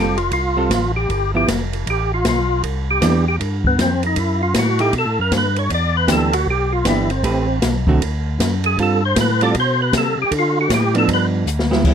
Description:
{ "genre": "soul jazz organ trio", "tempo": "156 BPM", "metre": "4/4", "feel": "swing 63% on 8ths", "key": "G mixolydian", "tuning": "A4 = 445 Hz", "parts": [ { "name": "percussive tonewheel organ", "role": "melody", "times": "0.0-11.3 s", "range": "B3 to D5", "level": "-19 LUFS", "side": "equal", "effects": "slow rotary speaker, overdrive, chorus vibrato" }, { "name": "hollow-body jazz guitar", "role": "accompaniment", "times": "0.0-11.9 s", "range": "D3 to B4", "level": "-19 LUFS", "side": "right 4 dB", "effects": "none" }, { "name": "tonewheel organ", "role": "bass", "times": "0.0-11.9 s", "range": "F1 to D3", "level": "-20 LUFS", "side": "equal", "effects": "overdrive, stopped rotary speaker" }, { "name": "open jazz drum kit", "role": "drums", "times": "0.2-11.9 s", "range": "crash cymbal, hi-hat, kick drum, ride cymbal, snare drum", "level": "-22 LUFS", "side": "left 1 dB", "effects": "none" } ], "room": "little or no reverb", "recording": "close, detailed microphones", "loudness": "-15 LUFS", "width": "side -8 dB against mid", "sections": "0.0-11.8 A section", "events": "tonewheel organ solo 0.0-11.9; drum fill 11.5-11.8", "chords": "0.0 G9sus4; 1.1 G9; 2.6 Cmaj9; 4.2 F#mmaj7; 4.9 B5; 5.7 Em7; 7.2 Am9; 8.0 D; 8.8 G9sus4; 10.3 Dm; 11.1 G7" }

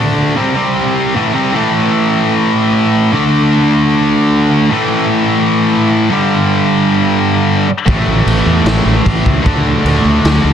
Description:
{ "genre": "hard rock", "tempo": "152 BPM", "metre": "4/4", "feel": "straight", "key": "A minor", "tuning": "A4 = 440 Hz", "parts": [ { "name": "scooped high-gain guitar", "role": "riff", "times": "0.0-10.5 s", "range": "G2 to D4", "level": "-11 LUFS", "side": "equal", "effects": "distortion" }, { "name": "fuzz fingered electric bass", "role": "bass", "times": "7.9-10.5 s", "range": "A1 to E2", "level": "-15 LUFS", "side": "equal", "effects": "overdrive" }, { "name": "raw garage drum kit", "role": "drums", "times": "7.9-10.3 s", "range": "crash cymbal, kick drum, snare drum", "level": "-16 LUFS", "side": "equal", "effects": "none" } ], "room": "light reverb, studio reverb", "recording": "dense, heavily limited modern master", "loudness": "-10 LUFS", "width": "side -8 dB against mid", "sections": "0.0-1.6 A section; 1.6-10.5 B section", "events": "break 0.0-1.6", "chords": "0.0 D5; 0.4 C5; 1.2 Am; 1.6 A5; 3.1 D5; 4.7 A5; 6.1 G5; 7.9 A5; 9.5 D5" }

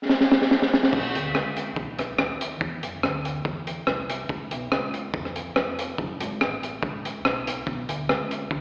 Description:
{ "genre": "ska", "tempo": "142 BPM", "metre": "4/4", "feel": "swing 53% on 8ths", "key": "B dorian", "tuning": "A4 = 441 Hz", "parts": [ { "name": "crunchy breakbeat drum kit", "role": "drums", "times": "0.1-8.6 s", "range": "crash cymbal, hi-hat, kick drum, rim click, snare drum", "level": "-23 LUFS", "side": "equal", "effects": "none" }, { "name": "fingered electric bass", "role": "bass", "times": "0.9-8.6 s", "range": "E#1 to F#2", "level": "-33 LUFS", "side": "equal", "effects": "none" } ], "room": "moderate plate reverb, RT60 1.6 s", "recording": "live gig heard through the venue's PA, recital hall reverb, AM radio sound", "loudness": "-23 LUFS", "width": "side -38 dB against mid", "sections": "0.9-8.6 A section", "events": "drum fill 0.1-0.9", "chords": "none" }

